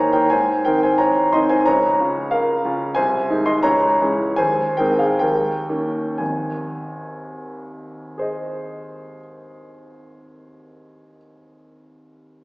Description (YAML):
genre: classical, romantic character piece for solo piano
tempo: 60-94 BPM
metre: 2/4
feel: rubato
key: Ab major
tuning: A4 = 441 Hz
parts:
  - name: clear baby grand piano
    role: solo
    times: 0.0-12.4 s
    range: Ab1 to C6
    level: -18 LUFS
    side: equal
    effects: none
room: wet scoring stage reverb, RT60 1.6 s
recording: heard from further back in the room, small speaker sound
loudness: -17 LUFS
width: side -24 dB against mid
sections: 0.0-6.2 A section; 6.2-10.1 B section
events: slowing down 2.3-6.2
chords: 0.3 Ab; 1.7 Bbm/Db; 2.9 Ab/C; 3.6 Dbm; 4.4 Ab/Eb; 5.2 Eb7; 6.2 Ab